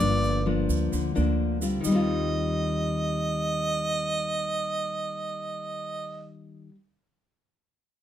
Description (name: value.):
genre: bossa nova.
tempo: 130 BPM.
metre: 4/4.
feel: straight.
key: Eb major.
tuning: A4 = 440 Hz.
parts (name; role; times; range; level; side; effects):
warm harmonica; melody; 0.0-6.3 s; D5 to Eb5; -28 LUFS; right 2 dB; none.
nylon-string guitar; accompaniment; 0.0-6.8 s; G2 to F4; -29 LUFS; left 3 dB; none.
upright bass; bass; 0.0-6.7 s; G1 to Eb2; -30 LUFS; right 1 dB; none.
tube shaker; percussion; 0.0-1.9 s; none; -39 LUFS; right 7 dB; none.
room: light reverb.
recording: close, detailed microphones.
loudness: -25 LUFS.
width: side -11 dB against mid.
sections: 0.0-1.8 A section; 1.8-5.5 B section.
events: none.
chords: 0.0 Gm7; 1.8 Eb69.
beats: 0.46 0.92 1.38 | 1.84 2.31 2.77 3.23 | 3.69 4.15 4.62 5.08.